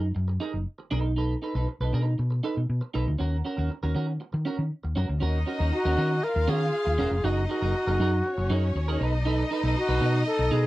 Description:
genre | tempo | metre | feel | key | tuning
disco | 119 BPM | 4/4 | straight | Eb minor | A4 = 441 Hz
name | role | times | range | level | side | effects
clean electric guitar | accompaniment | 0.0-10.7 s | Db4 to B4 | -31 LUFS | right 4 dB | analog chorus
hollow-body short-scale fingered electric bass | bass | 0.0-10.7 s | Fb1 to Eb3 | -26 LUFS | equal | none
warm studio violin section | second line | 5.2-10.7 s | Db4 to F5 | -32 LUFS | left 1 dB | none
bright alto flute | melody | 5.7-10.7 s | Gb4 to Bb4 | -27 LUFS | left 1 dB | none
room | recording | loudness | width
little or no reverb | dry, close 1970s-style studio recording | -24 LUFS | side -17 dB against mid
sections
0.0-5.2 A section; 5.2-10.7 B section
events
none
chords
0.0 Gb69; 0.9 B7; 3.2 Ebm7; 7.2 Gb69; 9.0 B7

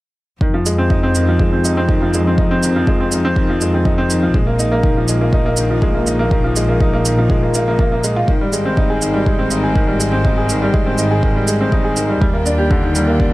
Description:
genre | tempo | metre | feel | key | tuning
piano and strings electronica | 122 BPM | 4/4 | straight | F dorian | A4 = 440 Hz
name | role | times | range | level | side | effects
bright string quartet | sustained chords | 0.4-13.3 s | F3 to G5 | -33 LUFS | left 1 dB | sidechain pumping
bright upright piano | riff | 0.4-13.3 s | D3 to Ab4 | -16 LUFS | equal | low-pass filter, digital delay
muted symphonic double bass section | bass | 0.4-13.3 s | Ab1 to F2 | -19 LUFS | equal | sidechain pumping
electronic kick drum | drums | 0.4-13.3 s | none | -17 LUFS | equal | none
shaker | drums | 0.7-13.1 s | none | -23 LUFS | right 3 dB | none
room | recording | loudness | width
little or no reverb | none | -13 LUFS | side -18 dB against mid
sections
0.4-13.3 A section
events
fade-in on string quartet 0.4-13.3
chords
0.4 Fm7; 4.3 Bb7sus4; 8.3 Abmaj7; 12.2 Ebmaj7

